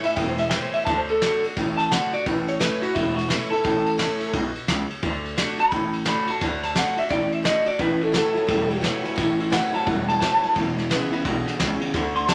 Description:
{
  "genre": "rockabilly",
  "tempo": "173 BPM",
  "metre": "4/4",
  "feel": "swing 62% on 8ths",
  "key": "A mixolydian",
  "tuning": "A4 = 441 Hz",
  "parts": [
    { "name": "picked acoustic archtop guitar", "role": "accompaniment", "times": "0.0-12.3 s", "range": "E2 to F#4", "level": "-32 LUFS", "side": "equal", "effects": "none" },
    { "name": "upright bass", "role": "bass", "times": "0.0-12.3 s", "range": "E1 to D2", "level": "-30 LUFS", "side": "equal", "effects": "none" },
    { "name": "soft brush drum kit", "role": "drums", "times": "0.0-12.3 s", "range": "kick drum, ride cymbal, snare drum", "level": "-30 LUFS", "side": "equal", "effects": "none" },
    { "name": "electric guitar through a small old amp", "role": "melody", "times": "0.1-12.3 s", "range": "E4 to C6", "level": "-26 LUFS", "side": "equal", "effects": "none" },
    { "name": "electric guitar through a small old amp", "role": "riff", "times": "7.8-12.3 s", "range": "E2 to B3", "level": "-30 LUFS", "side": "equal", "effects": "none" }
  ],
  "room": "moderate large studio reverb, RT60 1.2 s",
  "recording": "none",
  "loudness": "-23 LUFS",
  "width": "mono",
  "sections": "0.0-12.3 A section",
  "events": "clean electric guitar solo 0.0-12.3",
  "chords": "0.0 A; 0.9 D; 2.3 A; 5.0 D; 7.8 A; 10.6 E"
}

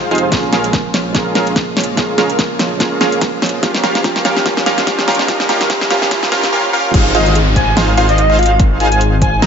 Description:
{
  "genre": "future bass",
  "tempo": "145 BPM",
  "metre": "4/4",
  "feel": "swing 56% on 16ths, half-time",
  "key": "unclear",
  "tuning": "A4 = 444 Hz",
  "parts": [
    { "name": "felt-muted upright piano", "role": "accompaniment", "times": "0.0-7.0 s", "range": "F3 to Ab4", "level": "-22 LUFS", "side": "right 3 dB", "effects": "sidechain pumping, dub echo" },
    { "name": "shimmering ambient pad", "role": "sustained chords", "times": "0.1-6.5 s", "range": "Db3 to G4", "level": "-28 LUFS", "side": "left 1 dB", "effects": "none" },
    { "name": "thumb-piano-like synth pluck", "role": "arpeggios", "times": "0.0-9.5 s", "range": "Eb4 to Db5", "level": "-26 LUFS", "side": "right 2 dB", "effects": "chorus, sidechain pumping, dub echo" },
    { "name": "supersaw stab", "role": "riff", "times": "0.0-9.5 s", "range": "Db4 to Bb5", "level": "-17 LUFS", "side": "right 1 dB", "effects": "sidechain pumping, low-pass filter, dub echo" },
    { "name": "wide detuned saw bass", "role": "bass", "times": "0.0-9.5 s", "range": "Eb1 to Bb1", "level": "-18 LUFS", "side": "equal", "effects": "chorus, sidechain pumping" },
    { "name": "pop drum kit", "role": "drums", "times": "0.1-9.5 s", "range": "crash cymbal, hi-hat, snare drum", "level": "-17 LUFS", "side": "equal", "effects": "overdrive" },
    { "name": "electronic kick drum", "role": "drums", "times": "0.3-9.3 s", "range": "none", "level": "-17 LUFS", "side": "equal", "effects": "overdrive" },
    { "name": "riser and downlifter", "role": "sound effects", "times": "2.5-9.5 s", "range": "none", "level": "-24 LUFS", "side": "equal", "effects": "none" },
    { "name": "wide unison pluck", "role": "arpeggios", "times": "6.9-9.5 s", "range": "F5 to Bb5", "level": "-24 LUFS", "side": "equal", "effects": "none" },
    { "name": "airy dreamy lead", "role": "melody", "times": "7.1-9.4 s", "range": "Eb5 to Ab5", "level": "-16 LUFS", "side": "equal", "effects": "chorus, sidechain pumping, tape echo" }
  ],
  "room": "moderate lush hall reverb, RT60 1.7 s",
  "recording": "high-pass filter, nothing above 7.7 kHz",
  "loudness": "-11 LUFS",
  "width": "side -7 dB against mid",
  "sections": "0.0-6.9 A section; 6.9-9.5 B section",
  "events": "build-up 0.0-6.9; drum fill 0.0-6.5; filter sweep on supersaw synth 0.0-6.9; drop 6.9-9.5",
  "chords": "0.3 Bbm7; 3.6 Eb7; 6.9 Ab6"
}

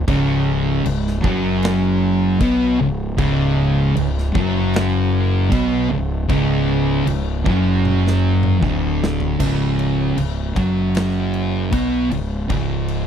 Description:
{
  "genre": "stoner and doom metal",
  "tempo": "77 BPM",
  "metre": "4/4",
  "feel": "straight",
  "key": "unclear",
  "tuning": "A4 = 440 Hz",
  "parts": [
    { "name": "fuzz fingered electric bass", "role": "bass", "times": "0.0-13.1 s", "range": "C#1 to B1", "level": "-22 LUFS", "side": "equal", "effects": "overdrive" },
    { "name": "sludgy distorted guitar", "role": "riff", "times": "0.1-9.4 s", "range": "C#2 to B3", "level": "-23 LUFS", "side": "left 1 dB", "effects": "overdrive" },
    { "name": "thick fuzz guitar", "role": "riff", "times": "0.1-13.1 s", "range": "C#2 to B3", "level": "-22 LUFS", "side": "left 8 dB", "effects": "distortion" },
    { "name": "thick fuzz guitar", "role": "riff", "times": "0.1-13.1 s", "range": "C#2 to B3", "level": "-21 LUFS", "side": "right 8 dB", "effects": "distortion" },
    { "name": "big rock drum kit", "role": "drums", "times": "0.1-13.1 s", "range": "crash cymbal, kick drum, snare drum, toms", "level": "-25 LUFS", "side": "equal", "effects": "none" }
  ],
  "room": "little or no reverb",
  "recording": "dry, close 1970s-style studio recording",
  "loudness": "-16 LUFS",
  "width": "side -8 dB against mid",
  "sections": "0.0-9.4 A section; 9.4-13.1 B section",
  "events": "drum fill 7.8-9.4",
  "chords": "0.0 Bmadd9/C#; 9.4 Bsus2/C#"
}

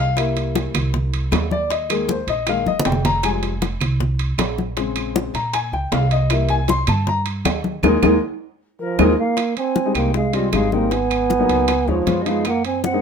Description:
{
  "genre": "Afro-Cuban jazz",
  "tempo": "156 BPM",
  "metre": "4/4",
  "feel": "straight",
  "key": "F minor",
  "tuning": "A4 = 440 Hz",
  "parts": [
    { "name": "warm grand piano", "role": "accompaniment", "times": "0.0-13.0 s", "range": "Db3 to C6", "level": "-21 LUFS", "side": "left 5 dB", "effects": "none" },
    { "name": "upright bass", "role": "bass", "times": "0.0-13.0 s", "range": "F1 to Bb2", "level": "-22 LUFS", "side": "right 1 dB", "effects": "none" },
    { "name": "bongos", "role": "percussion", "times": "0.2-13.0 s", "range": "none", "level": "-27 LUFS", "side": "left 10 dB", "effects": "none" },
    { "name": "claves", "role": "percussion", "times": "0.2-12.6 s", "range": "none", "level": "-29 LUFS", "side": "right 6 dB", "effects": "none" },
    { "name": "congas", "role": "percussion", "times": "0.2-13.0 s", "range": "none", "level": "-25 LUFS", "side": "left 2 dB", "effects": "none" },
    { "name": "timbales", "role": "percussion", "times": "0.2-12.8 s", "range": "none", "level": "-26 LUFS", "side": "right 9 dB", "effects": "none" },
    { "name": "breathy trombone", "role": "melody", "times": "8.8-13.0 s", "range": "F3 to C4", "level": "-20 LUFS", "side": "right 5 dB", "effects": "none" },
    { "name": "breathy mellow jazz flute", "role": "second line", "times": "8.8-13.0 s", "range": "Bb4 to Ab5", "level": "-27 LUFS", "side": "left 5 dB", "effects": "none" }
  ],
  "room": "light reverb",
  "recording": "minimal, uncompressed stereo recording",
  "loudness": "-17 LUFS",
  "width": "side -6 dB against mid",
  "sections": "0.0-9.4 A section; 9.4-13.0 B section",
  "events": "grand piano solo 0.0-9.4; drum fill 2.7-3.2, 8.4-9.4; band accent 7.8-9.4",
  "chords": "0.2 C7; 1.7 Ebsus4; 3.2 Fmadd9; 4.8 Bbm7; 6.3 C7; 7.8 Ebsus4; 9.4 Fm7; 10.9 Abm9; 11.7 Db7; 12.4 Gb6"
}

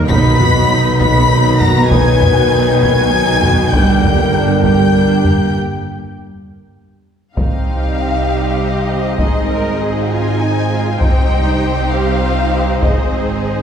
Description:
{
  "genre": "cinematic, hybrid orchestral and electronic film score",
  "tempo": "66 BPM (dotted quarters)",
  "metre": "6/8",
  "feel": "straight",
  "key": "C minor",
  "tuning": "A4 = 440 Hz",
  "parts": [
    { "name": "rich symphonic viola section", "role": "accompaniment", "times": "0.0-13.6 s", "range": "F#3 to G4", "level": "-22 LUFS", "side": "right 1 dB", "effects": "none" },
    { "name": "warm analog pad", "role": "sustained chords", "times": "0.0-13.6 s", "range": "F#3 to G5", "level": "-22 LUFS", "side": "equal", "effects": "chorus" },
    { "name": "clear symphonic double bass section", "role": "bass", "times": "0.0-13.6 s", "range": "G1 to C2", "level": "-18 LUFS", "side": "right 2 dB", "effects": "none" },
    { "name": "rich symphonic cello section", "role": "bass", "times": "0.0-5.5, 8.3-13.6 s", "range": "G2 to Bb4", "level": "-19 LUFS", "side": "right 3 dB", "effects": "none" },
    { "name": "warm symphonic violin section", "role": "melody", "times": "0.1-13.6 s", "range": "Eb5 to B6", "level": "-22 LUFS", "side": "left 3 dB", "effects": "none" },
    { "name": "rich studio violin section", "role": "second line", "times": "0.1-13.6 s", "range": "G4 to B5", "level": "-20 LUFS", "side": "left 3 dB", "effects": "none" },
    { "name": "mellow French horn section", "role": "sustained chords", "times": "0.1-5.5 s", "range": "D3 to B4", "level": "-19 LUFS", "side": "left 6 dB", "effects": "none" },
    { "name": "taiko ensemble", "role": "drums", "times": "0.1-13.4 s", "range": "none", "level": "-18 LUFS", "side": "equal", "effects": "none" }
  ],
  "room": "wet concert hall reverb, RT60 1.8 s",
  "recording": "heard from further back in the room",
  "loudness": "-11 LUFS",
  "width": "side -8 dB against mid",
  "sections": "0.0-7.4 A section; 7.4-13.6 B section",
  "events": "break 5.5-7.4; drum fill 6.5-7.4",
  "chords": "0.1 B; 3.7 Gm; 7.4 Cm; 9.2 Ab; 11.0 Cm; 12.8 Ab"
}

